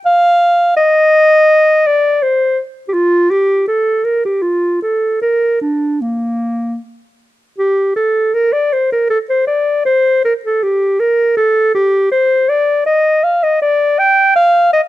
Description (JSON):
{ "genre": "classical, baroque-style fantasia for unaccompanied clarinet", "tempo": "76-84 BPM", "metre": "3/4", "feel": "rubato", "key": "Bb major, G minor from 7.6 s", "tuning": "A4 = 439 Hz", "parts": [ { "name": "warm clarinet", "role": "solo", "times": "0.1-14.8 s", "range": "Bb3 to G5", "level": "-11 LUFS", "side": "equal", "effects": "none" } ], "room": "light reverb", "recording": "close, detailed microphones", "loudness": "-11 LUFS", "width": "side -15 dB against mid", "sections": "0.0-7.6 A section; 7.6-14.9 A section", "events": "none", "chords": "none" }